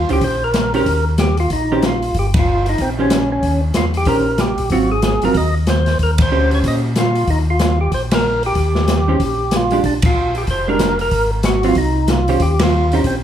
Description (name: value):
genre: soul jazz organ trio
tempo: 187 BPM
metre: 4/4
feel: swing 62% on 8ths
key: Eb mixolydian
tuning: A4 = 441 Hz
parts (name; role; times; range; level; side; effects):
- percussive tonewheel organ; melody; 0.0-13.2 s; C4 to Eb5; -19 LUFS; equal; slow rotary speaker, overdrive
- mellow tonewheel organ; bass; 0.0-13.2 s; F1 to Bb2; -19 LUFS; equal; slow rotary speaker
- vintage hollow-body jazz guitar; accompaniment; 0.1-6.8, 9.1-13.0 s; Eb3 to C5; -19 LUFS; right 3 dB; none
- open jazz drum kit; drums; 0.1-13.1 s; hi-hat, kick drum, ride cymbal, snare drum; -20 LUFS; equal; none
room: moderate large studio reverb, RT60 0.9 s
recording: heard from further back in the room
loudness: -14 LUFS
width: side -10 dB against mid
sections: 0.0-13.2 A section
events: band accent 2.3, 6.2, 8.1, 10.0, 12.6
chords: 0.0 Eb13; 4.7 Ab6; 6.0 Eb13; 9.8 Bb5; 11.1 Ab6; 12.4 Eb13